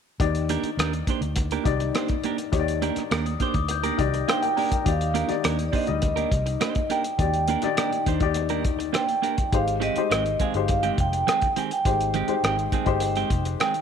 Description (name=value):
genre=lush 1970s-style soul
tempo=103 BPM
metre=4/4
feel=straight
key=Eb major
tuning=A4 = 440 Hz
part: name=dark baby grand piano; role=accompaniment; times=0.2-13.8 s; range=Eb3 to Bb5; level=-28 LUFS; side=left 14 dB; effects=none
part: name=vintage muted fingered electric bass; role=bass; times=0.2-13.5 s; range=F1 to Eb2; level=-28 LUFS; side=equal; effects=none
part: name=cloth-damped thuddy drum kit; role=drums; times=0.2-13.8 s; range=hi-hat, kick drum, rim click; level=-27 LUFS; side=equal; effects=none
part: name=clean electric guitar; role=riff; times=0.5-13.8 s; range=Eb3 to C5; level=-29 LUFS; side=right 13 dB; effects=none
part: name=glockenspiel with rubber mallets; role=texture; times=3.3-4.7 s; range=D6 to Bb6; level=-34 LUFS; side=left 15 dB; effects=none
part: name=vibraphone with medium mallets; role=melody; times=4.3-13.8 s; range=D5 to Ab5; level=-26 LUFS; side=right 3 dB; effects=none
room=light reverb, studio reverb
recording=1960s-style stereo with parts hard left and right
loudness=-22 LUFS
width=side -7 dB against mid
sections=0.2-4.9 A section; 4.9-13.8 B section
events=none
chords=0.2 Ebmaj7; 9.5 Abmaj7